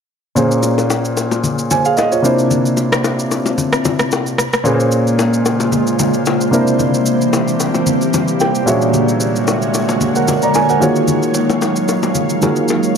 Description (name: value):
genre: amapiano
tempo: 112 BPM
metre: 4/4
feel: swing 55% on 16ths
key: Bb minor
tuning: A4 = 440 Hz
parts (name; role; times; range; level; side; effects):
- warm baby grand piano; accompaniment; 0.4-13.0 s; Bb2 to Bb5; -15 LUFS; equal; none
- electronic shaker and rim click; drums; 0.4-12.9 s; none; -22 LUFS; equal; overdrive
- congas and bongos; percussion; 0.4-12.8 s; none; -20 LUFS; left 5 dB; none
- ethereal airy pad; sustained chords; 5.1-13.0 s; Db3 to F5; -18 LUFS; right 1 dB; ensemble chorus, built-in reverb
room: moderate lush hall reverb, RT60 2.0 s, studio ambience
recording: dark, warm production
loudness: -13 LUFS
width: side -6 dB against mid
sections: 0.4-4.7 A section; 4.7-13.0 B section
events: grand piano fill 8.1-8.9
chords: 0.4 Bbm9; 2.2 C7; 4.4 N.C.; 4.7 Bbm9; 6.5 C7; 8.7 Bb7alt; 10.8 Ebm11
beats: | 0.36 0.90 1.44 1.97 | 2.51 3.04 3.58 4.12 | 4.65 5.19 5.72 6.26 | 6.79 7.33 7.87 8.40 | 8.94 9.47 10.01 10.54 | 11.08 11.62 12.15 12.69